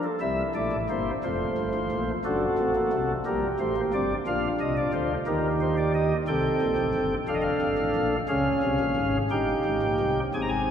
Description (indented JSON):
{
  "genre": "classical, baroque-style 4-part fugue for pipe organ",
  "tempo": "59 BPM (dotted quarters)",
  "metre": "6/8",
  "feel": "straight",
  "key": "unclear",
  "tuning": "A4 = 441 Hz",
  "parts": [
    { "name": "pipe organ, flutes", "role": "solo", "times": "0.0-10.7 s", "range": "F1 to Bb5", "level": "-23 LUFS", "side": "equal", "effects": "none" }
  ],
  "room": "wet cathedral reverb, RT60 5.0 s",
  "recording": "heard from further back in the room",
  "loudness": "-23 LUFS",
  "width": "side -8 dB against mid",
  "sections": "0.2-10.7 A section",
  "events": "none",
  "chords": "0.2 C7; 1.2 F; 2.2 D7/F#; 3.3 Gm; 4.3 Bb; 5.3 Eb; 6.3 Gsus24; 7.3 Dm/F; 8.3 Db; 9.3 Eb/G",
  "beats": "| 0.21 1.23 | 2.25 3.25 | 4.26 5.26 | 6.27 7.28 | 8.29 9.31 | 10.34"
}